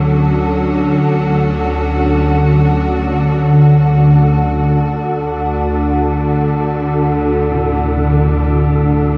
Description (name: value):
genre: dark ambient drone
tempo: free time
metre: none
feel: none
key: D major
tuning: A4 = 440 Hz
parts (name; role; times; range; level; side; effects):
- clear studio cello section; sustained chords; 0.0-9.2 s; D3 to F#4; -23 LUFS; equal; shimmer reverb
- organ-like drone; drone; 0.0-9.2 s; D2 to D3; -15 LUFS; equal; ensemble chorus, built-in reverb
- wind-like tuned noise texture; texture; 0.0-9.2 s; A4; -26 LUFS; equal; built-in reverb, lush chorus, shimmer reverb
- old church bells; arpeggios; 7.5-9.2 s; A2; -25 LUFS; equal; none
room: wet plate reverb, RT60 3.3 s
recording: dreamy mix soaked in reverb, cassette tape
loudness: -14 LUFS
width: mono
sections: 0.0-9.2 A section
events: none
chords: 0.0 F#m; 4.7 D